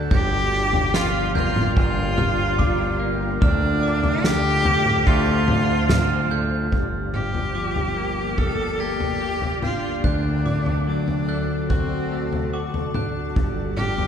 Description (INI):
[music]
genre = post-rock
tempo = 72 BPM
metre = 4/4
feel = straight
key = G minor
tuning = A4 = 440 Hz
[part]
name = shimmering ambient pad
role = sustained chords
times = 0.0-14.1 s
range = Bb3 to A5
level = -34 LUFS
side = right 1 dB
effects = chorus, built-in reverb
[part]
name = glockenspiel with hard plastic mallets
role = arpeggios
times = 0.0-14.1 s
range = D6 to A6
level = -30 LUFS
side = right 4 dB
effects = none
[part]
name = twelve-string electric guitar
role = arpeggios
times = 0.0-14.1 s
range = G2 to G4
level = -29 LUFS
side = left 2 dB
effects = none
[part]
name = growling fingered electric bass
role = bass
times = 0.0-14.1 s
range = G1 to D2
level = -25 LUFS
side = equal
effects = overdrive
[part]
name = bright cello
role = melody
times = 0.1-14.1 s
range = C4 to A4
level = -25 LUFS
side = equal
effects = none
[part]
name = loose indie drum kit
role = drums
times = 0.1-14.1 s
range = kick drum, snare drum, toms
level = -24 LUFS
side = equal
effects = none
[sound]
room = wet church reverb, RT60 2.5 s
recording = recorded in a church or concert hall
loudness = -19 LUFS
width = side -8 dB against mid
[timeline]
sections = 0.0-6.7 A section; 6.7-14.1 B section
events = none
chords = 0.1 Gm7; 3.4 Dm7; 6.7 Gm7; 10.0 D; 13.4 Gm7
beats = | 0.11 0.94 1.76 2.59 | 3.42 4.25 5.07 5.90 | 6.73 7.56 8.39 9.22 | 10.05 10.88 11.71 12.54 | 13.37